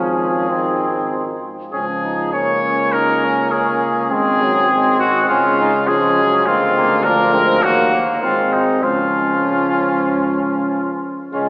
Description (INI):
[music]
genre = classical, brass quintet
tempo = 95-104 BPM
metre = 4/4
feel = rubato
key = Db major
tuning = A4 = 440 Hz
[part]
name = clear trumpet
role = melody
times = 0.0-11.5 s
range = Eb4 to Db5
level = -18 LUFS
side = left 1 dB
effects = none
[part]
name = clear flugelhorn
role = second line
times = 0.0-11.5 s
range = Bb3 to Eb4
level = -22 LUFS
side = right 1 dB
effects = none
[part]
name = clear trombone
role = accompaniment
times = 0.0-11.5 s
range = F3 to Db4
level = -21 LUFS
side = equal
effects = none
[part]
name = warm French horn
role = accompaniment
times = 0.0-11.5 s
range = Eb3 to Bb3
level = -22 LUFS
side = equal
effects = none
[part]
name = mellow tuba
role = bass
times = 0.0-11.5 s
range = Ab1 to Eb2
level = -24 LUFS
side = equal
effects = none
[sound]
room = wet church reverb, RT60 3.5 s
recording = recorded in a church or concert hall, small speaker sound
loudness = -14 LUFS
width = side -24 dB against mid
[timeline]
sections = 0.0-11.3 A section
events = none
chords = 0.5 Ab; 1.7 Db; 4.1 Ab7; 5.3 Db; 6.5 Bb7/D; 7.6 Ebm; 8.2 Ab; 8.8 Db